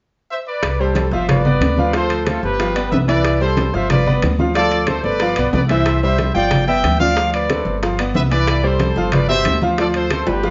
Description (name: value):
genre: latin, salsa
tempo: 184 BPM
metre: 4/4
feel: straight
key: C major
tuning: A4 = 441 Hz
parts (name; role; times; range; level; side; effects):
- clear trumpet section; melody; 0.3-10.5 s; F4 to G5; -22 LUFS; equal; none
- upright bass; bass; 0.6-10.5 s; G1 to D2; -23 LUFS; equal; none
- bongos; percussion; 0.6-10.5 s; none; -30 LUFS; equal; none
- congas; percussion; 0.6-10.5 s; none; -24 LUFS; equal; none
- timbales; percussion; 0.6-10.3 s; none; -28 LUFS; equal; none
- bright grand piano; accompaniment; 0.8-10.5 s; B2 to F5; -23 LUFS; equal; none
room: moderate large studio reverb, RT60 0.9 s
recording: nothing above 7.6 kHz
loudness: -17 LUFS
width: mono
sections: 0.6-10.5 A section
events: drum fill 10.3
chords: 0.0 Bm; 0.6 C5; 1.3 G7; 1.9 Dm7; 2.6 G7; 3.2 Cmaj7; 3.9 G7; 4.6 Dm7; 5.2 G7; 5.9 C; 6.5 G7; 7.2 Dm7; 7.8 G7; 8.5 Cmaj7; 9.1 G7; 9.8 Dm7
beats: 0.30 | 0.63 0.96 1.29 1.61 | 1.94 2.27 2.59 2.92 | 3.25 3.58 3.90 4.23 | 4.56 4.88 5.21 5.54 | 5.86 6.19 6.52 6.84 | 7.17 7.50 7.82 8.15 | 8.48 8.80 9.13 9.46 | 9.78 10.11 10.43